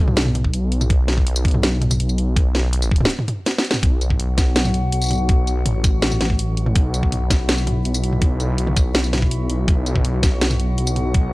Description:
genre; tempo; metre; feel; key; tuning
half-time drum and bass; 164 BPM; 4/4; half-time; unclear; A4 = 443 Hz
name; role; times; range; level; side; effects
dark detuned saw bass; bass; 0.0-11.3 s; A1 to B1; -20 LUFS; equal; none
drum and bass drum kit; drums; 0.1-11.2 s; hi-hat, snare drum, tambourine, toms; -21 LUFS; equal; none
electronic kick drum; drums; 0.4-11.2 s; none; -18 LUFS; equal; none
metallic inharmonic drone; texture; 4.2-11.3 s; F#3 to F#4; -28 LUFS; left 4 dB; chorus, built-in reverb
room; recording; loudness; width
digital ambience; dry, gritty hardware recording, cassette tape; -16 LUFS; side -21 dB against mid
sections
0.0-3.8 A section; 3.8-11.3 A section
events
drop 0.0-3.8, 3.8-11.3; break 3.1-3.8; drum fill 3.5-3.8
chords
0.0 N.C.; 3.8 B5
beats
0.17 0.54 | 0.90 1.27 1.64 2.00 | 2.37 2.73 3.10 3.46 | 3.83 4.20 4.56 4.93 | 5.29 5.66 6.03 6.39 | 6.76 7.12 7.49 7.85 | 8.22 8.59 8.95 9.32 | 9.68 10.05 10.41 10.78 | 11.15

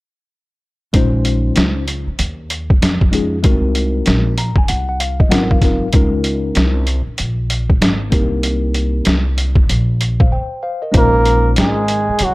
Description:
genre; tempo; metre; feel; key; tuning
hip hop, jazz-hop; 96 BPM; 4/4; swing 63% on 16ths; Bb minor; A4 = 440 Hz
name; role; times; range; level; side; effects
mellow tine electric piano; accompaniment; 0.9-11.8 s; Gb3 to Bb5; -20 LUFS; left 2 dB; medium stereo tremolo
upright bass; bass; 0.9-12.3 s; Ab1 to F2; -18 LUFS; equal; none
trip hop sampler-style drum kit; drums; 0.9-12.3 s; hi-hat, kick drum, snare drum; -15 LUFS; equal; overdrive
clear trombone; second line; 10.9-12.3 s; Gb3 to Bb3; -20 LUFS; right 3 dB; none
breathy flugelhorn; melody; 11.0-12.3 s; Gb4 to Bb4; -16 LUFS; right 1 dB; analog delay
room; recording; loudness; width
small room ambience; none; -13 LUFS; side -21 dB against mid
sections
0.9-10.9 A section; 10.9-12.3 B section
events
tine electric piano fill 4.1-5.9; break 10.3-10.9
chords
0.9 Bbm11; 3.4 Ab9; 5.3 Ab13; 5.9 Db6; 8.1 Cm7; 10.9 Bbm11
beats
| 0.94 1.56 2.19 2.81 | 3.44 4.07 4.69 5.32 | 5.94 6.57 7.19 7.82 | 8.44 9.06 9.69 10.31 | 10.94 11.56 12.19

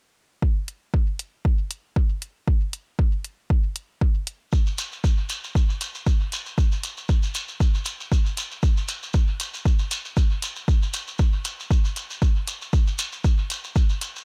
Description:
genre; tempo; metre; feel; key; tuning
techno; 117 BPM; 4/4; swing 55% on 16ths; none; none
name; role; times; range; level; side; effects
electronic kick drum; drums; 0.4-13.9 s; none; -22 LUFS; equal; overdrive
electronic hi-hat; drums; 0.7-14.1 s; none; -32 LUFS; equal; none
shekere; percussion; 4.5-14.2 s; none; -34 LUFS; equal; dub echo
room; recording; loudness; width
small room reverb; echo-heavy mix; -24 LUFS; mono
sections
0.4-8.6 A section; 8.6-14.2 B section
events
none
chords
none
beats
| 0.42 0.94 1.45 1.96 | 2.48 2.99 3.50 4.01 | 4.53 5.04 5.55 6.07 | 6.58 7.09 7.60 8.12 | 8.63 9.14 9.65 10.17 | 10.68 11.19 11.71 12.22 | 12.73 13.24 13.76

